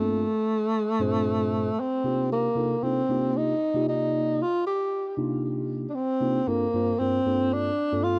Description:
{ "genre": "jazz", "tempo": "115 BPM", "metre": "4/4", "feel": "swing 54% on 16ths", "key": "unclear", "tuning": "A4 = 440 Hz", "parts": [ { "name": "breathy tenor saxophone", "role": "melody", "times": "0.0-8.2 s", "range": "A3 to G4", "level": "-27 LUFS", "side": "equal", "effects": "none" }, { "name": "mellow tine electric piano", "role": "accompaniment", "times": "0.0-8.2 s", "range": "G2 to D5", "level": "-30 LUFS", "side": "equal", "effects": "phaser" } ], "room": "little or no reverb", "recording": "dry, close 1970s-style studio recording", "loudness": "-26 LUFS", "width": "mono", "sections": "0.0-8.2 A section", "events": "none", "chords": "0.0 Gm11; 2.1 Cm11; 6.5 Gm11" }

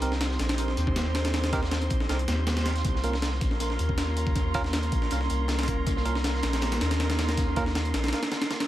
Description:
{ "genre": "drum and bass, jungle", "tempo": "159 BPM", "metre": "4/4", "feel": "straight", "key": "unclear", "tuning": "A4 = 440 Hz", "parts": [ { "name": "airy breathy pad", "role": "sustained chords", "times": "0.0-8.7 s", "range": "Bb3 to C5", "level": "-33 LUFS", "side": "right 1 dB", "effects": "chorus" }, { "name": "bell-like tine electric piano", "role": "stabs", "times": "0.0-7.6 s", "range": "Bb3 to Bb4", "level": "-35 LUFS", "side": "right 3 dB", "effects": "vintage 12-bit sampler grit, dub echo" }, { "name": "soft dub sub bass", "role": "bass", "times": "0.0-8.1 s", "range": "Bb1 to Eb2", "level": "-28 LUFS", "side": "equal", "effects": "tube saturation" }, { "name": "breakbeat sampler-style drum kit", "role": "drums", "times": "0.0-8.7 s", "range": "hi-hat, kick drum, snare drum", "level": "-29 LUFS", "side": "equal", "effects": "analog delay" }, { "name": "crunchy breakbeat drum kit", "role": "drums", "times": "0.0-8.6 s", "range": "hi-hat, snare drum", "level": "-41 LUFS", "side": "left 3 dB", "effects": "high-pass filter on hats, high-pass filter on snare, high-pass filter on room, analog delay" }, { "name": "wind-like tuned noise texture", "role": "texture", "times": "0.0-8.7 s", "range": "C6", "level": "-37 LUFS", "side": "right 7 dB", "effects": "built-in reverb" } ], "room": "light reverb", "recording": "echo-heavy mix", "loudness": "-24 LUFS", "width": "side -14 dB against mid", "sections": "0.0-8.7 A section", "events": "none", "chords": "0.0 Cm7; 2.9 Bbm" }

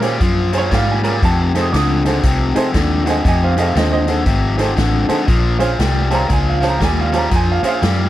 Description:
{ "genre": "electric blues shuffle", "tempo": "118 BPM", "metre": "4/4", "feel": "swing 63% on 8ths", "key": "Bb minor", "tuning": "A4 = 440 Hz", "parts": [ { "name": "clear upright piano", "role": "accompaniment", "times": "0.0-8.1 s", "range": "Db4 to Eb6", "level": "-20 LUFS", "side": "right 4 dB", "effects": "none" }, { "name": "overdriven electric guitar", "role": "riff", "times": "0.0-8.1 s", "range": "F2 to G3", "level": "-19 LUFS", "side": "left 3 dB", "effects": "none" }, { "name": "vintage muted fingered electric bass", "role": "bass", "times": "0.0-8.1 s", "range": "G#1 to Bb2", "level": "-18 LUFS", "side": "equal", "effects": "none" }, { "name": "swinging big-band drum kit", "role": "drums", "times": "0.0-8.0 s", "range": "hi-hat, kick drum, snare drum", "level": "-20 LUFS", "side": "equal", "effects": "none" } ], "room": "light reverb", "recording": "faint mains hum", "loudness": "-13 LUFS", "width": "side -14 dB against mid", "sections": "0.0-8.1 A section", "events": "none", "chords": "0.0 Bbm9; 1.2 F7#9; 5.3 Bbm9" }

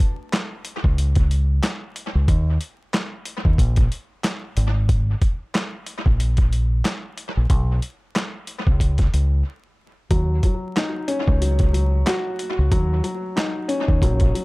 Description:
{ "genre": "hip hop, boom-bap hip-hop", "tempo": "92 BPM", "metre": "4/4", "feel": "swing 58% on 16ths", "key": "Eb minor", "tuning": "A4 = 440 Hz", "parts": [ { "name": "boom bap sampler-style drum kit", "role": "drums", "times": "0.0-14.4 s", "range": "handclaps, hi-hat, kick drum, snare drum", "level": "-21 LUFS", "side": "equal", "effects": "tape echo" }, { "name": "deep dub fingered electric bass", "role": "bass", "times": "0.8-14.3 s", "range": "Ab1 to Eb2", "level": "-19 LUFS", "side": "equal", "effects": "none" }, { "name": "dark grand piano", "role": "accompaniment", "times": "10.1-14.4 s", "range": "Gb3 to Gb4", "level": "-25 LUFS", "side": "left 2 dB", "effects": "high-pass filter, low-pass filter, tape echo" } ], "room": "digital ambience", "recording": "echo-heavy mix, vinyl crackle", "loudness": "-19 LUFS", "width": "side -23 dB against mid", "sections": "0.0-14.4 A section", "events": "break 9.5-10.1", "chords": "0.0 Eb5; 4.6 Absus2; 7.5 Bsus2; 10.1 Ebm7" }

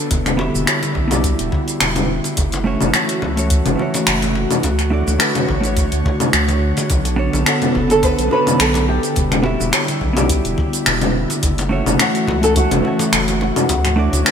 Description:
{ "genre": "sunset chillout", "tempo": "106 BPM", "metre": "4/4", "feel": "swing 55% on 16ths", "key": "E dorian", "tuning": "A4 = 439 Hz", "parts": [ { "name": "hollow-body jazz guitar", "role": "accompaniment", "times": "0.0-14.3 s", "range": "A3 to E5", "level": "-23 LUFS", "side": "equal", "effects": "auto-pan, ping-pong delay" }, { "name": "airy breathy pad", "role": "sustained chords", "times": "0.0-14.3 s", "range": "D3 to C#5", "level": "-22 LUFS", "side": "right 1 dB", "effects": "chorus" }, { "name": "round analog bass", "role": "bass", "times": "0.1-14.2 s", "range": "E1 to D2", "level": "-21 LUFS", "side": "equal", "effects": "none" }, { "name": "deep house drum kit", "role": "drums", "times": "0.1-14.3 s", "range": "congas, finger snaps, hi-hat, shaker", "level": "-19 LUFS", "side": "left 1 dB", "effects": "gated reverb" }, { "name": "electronic kick drum", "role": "drums", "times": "0.1-13.8 s", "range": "none", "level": "-20 LUFS", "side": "equal", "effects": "none" }, { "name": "congas", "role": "percussion", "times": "0.1-14.2 s", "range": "none", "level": "-28 LUFS", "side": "left 4 dB", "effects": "none" }, { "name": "flamenco guitar", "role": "melody", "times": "7.5-14.3 s", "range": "F#4 to B4", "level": "-20 LUFS", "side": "equal", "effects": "lush chorus, ping-pong delay" } ], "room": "moderate lush hall reverb, RT60 2.9 s", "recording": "bright 1980s-style digital production", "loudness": "-14 LUFS", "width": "side -7 dB against mid", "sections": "0.0-14.3 A section", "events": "none", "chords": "0.1 Em7; 2.4 F#m7; 4.6 Dmaj7; 6.9 Bm7; 9.2 Em7; 11.4 F#m7; 13.7 Dmaj7" }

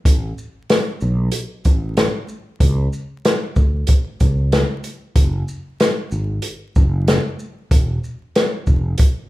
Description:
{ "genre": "hip hop, jazz-hop", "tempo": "94 BPM", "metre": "4/4", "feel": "swing 57% on 16ths", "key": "unclear", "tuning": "A4 = 435 Hz", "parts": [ { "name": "fretless electric bass", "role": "bass", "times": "0.1-8.9 s", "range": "E1 to D2", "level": "-21 LUFS", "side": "equal", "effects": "none" }, { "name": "open jazz drum kit", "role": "drums", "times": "0.1-9.2 s", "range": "hi-hat, kick drum, shaker, snare drum", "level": "-16 LUFS", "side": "equal", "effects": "none" } ], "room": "moderate large studio reverb, RT60 0.9 s", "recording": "band playing live in one room, vinyl crackle", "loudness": "-16 LUFS", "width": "side -17 dB against mid", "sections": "0.1-9.3 A section", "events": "none", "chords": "none" }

